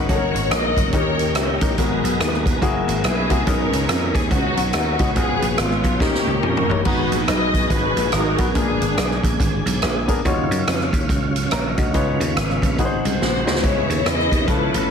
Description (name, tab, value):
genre	uptempo gospel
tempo	142 BPM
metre	4/4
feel	swing 61% on 8ths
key	unclear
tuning	A4 = 440 Hz
part	muted studio string section	melody	0.0-9.4, 13.2-14.9 s	G#3 to D#5	-23 LUFS	left 2 dB	none
part	warm grand piano	accompaniment	0.0-14.9 s	G#2 to A#5	-25 LUFS	left 4 dB	none
part	tonewheel organ	sustained chords	0.0-14.9 s	C#3 to E#5	-27 LUFS	right 2 dB	chorus vibrato, fast rotary speaker
part	dry thumbed slap bass	bass	0.0-14.9 s	F#1 to F#2	-24 LUFS	equal	none
part	swinging big-band drum kit	drums	0.1-14.8 s	crash cymbal, hi-hat, kick drum, rim click, snare drum, toms	-22 LUFS	equal	none
room	light reverb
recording	heavily compressed radio sound, multiband compression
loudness	-17 LUFS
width	side -7 dB against mid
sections	0.0-14.9 A section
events	drum fill 6.0-6.9, 13.2-13.6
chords	0.1 F#6; 0.9 D#7; 1.8 G#m9; 2.6 F#9; 3.5 B69; 5.2 C#7sus4; 6.0 D#7; 6.9 G#m9; 8.6 A#7b9; 10.2 D#m9; 11.9 C#9; 12.8 G#7; 13.6 C#m9